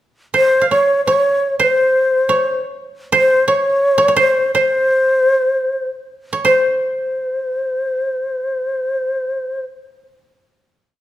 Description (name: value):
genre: japanese traditional, Japanese chamber music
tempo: 53-89 BPM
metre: 2/4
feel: rubato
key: unclear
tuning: A4 = 440 Hz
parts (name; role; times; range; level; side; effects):
- koto; second line; 0.3-9.6 s; C5 to F5; -18 LUFS; right 4 dB; none
- breathy mellow shakuhachi; melody; 0.4-9.6 s; C5 to Db5; -15 LUFS; left 1 dB; none
room: moderate recital hall reverb, RT60 1.4 s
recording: none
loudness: -14 LUFS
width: side -13 dB against mid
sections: 0.3-6.5 A section; 6.5-10.8 final chord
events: slowing down 3.1-6.5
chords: none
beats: | 0.35 1.07 | 1.78 2.46 | 3.14 3.83 | 4.56 5.43 | 6.46 7.54 | 8.59